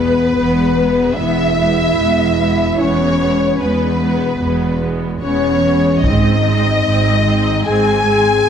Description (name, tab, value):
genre	cinematic, epic orchestral film score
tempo	74 BPM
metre	4/4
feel	straight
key	unclear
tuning	A4 = 441 Hz
part	warm symphonic violin section	melody	0.0-8.5 s	B4 to G#5	-22 LUFS	left 2 dB	none
part	warm symphonic violin section	second line	0.0-8.5 s	B4 to G#5	-21 LUFS	left 1 dB	none
part	rich symphonic viola section	accompaniment	0.0-8.5 s	G#3 to B#3	-22 LUFS	right 2 dB	none
part	mellow French horn section	sustained chords	0.0-8.5 s	B3 to G#4	-17 LUFS	left 3 dB	none
part	rich symphonic cello section	bass	0.0-8.4 s	E2 to G#2	-20 LUFS	right 2 dB	none
part	rich symphonic double bass section	bass	0.0-8.4 s	E1 to G#1	-21 LUFS	right 3 dB	none
part	taiko ensemble	drums	6.0-7.6 s	none	-21 LUFS	right 1 dB	none
part	timpani	percussion	6.0-7.2 s	G#2	-25 LUFS	equal	none
room	wet scoring stage reverb, RT60 1.6 s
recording	none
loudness	-12 LUFS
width	side -8 dB against mid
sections	0.0-8.5 A section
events	none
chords	0.0 E; 6.0 G#